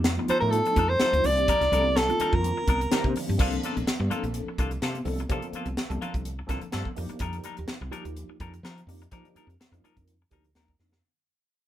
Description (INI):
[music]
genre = electric jazz fusion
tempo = 126 BPM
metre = 4/4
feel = swing 54% on 16ths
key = C dorian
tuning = A4 = 440 Hz
[part]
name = tine electric piano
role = accompaniment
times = 0.0-11.0 s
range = Eb3 to Bb4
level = -34 LUFS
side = equal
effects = overdrive, medium stereo tremolo, phaser
[part]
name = woody fretless electric bass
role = bass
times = 0.0-11.0 s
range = Bb1 to F3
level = -30 LUFS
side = equal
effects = none
[part]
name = crisp fusion drum kit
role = drums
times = 0.0-11.0 s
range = crash cymbal, hi-hat, kick drum, snare drum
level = -29 LUFS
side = equal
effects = none
[part]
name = semi-hollow electric guitar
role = stabs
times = 0.1-11.0 s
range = G3 to Bb4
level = -35 LUFS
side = left 5 dB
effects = none
[part]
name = congas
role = percussion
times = 0.2-7.2 s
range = none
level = -37 LUFS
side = right 1 dB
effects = none
[part]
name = warm soprano saxophone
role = melody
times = 0.3-3.2 s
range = A4 to D5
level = -24 LUFS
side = equal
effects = none
[sound]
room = moderate small room reverb, RT60 0.6 s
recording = band playing live in one room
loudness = -24 LUFS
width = side -12 dB against mid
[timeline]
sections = 0.0-3.4 A section; 3.4-11.0 B section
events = drum fill 3.0-3.4, 10.8; fade-out 3.4-11.0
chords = 0.0 F13; 1.2 Cm9; 3.4 C13sus4; 7.0 F13sus4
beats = 0.05 0.53 1.01 | 1.48 1.96 2.44 2.91 | 3.39 3.87 4.34 4.82 | 5.30 5.77 6.25 6.73 | 7.21 7.68 8.16 8.64 | 9.12 9.59 10.07 10.55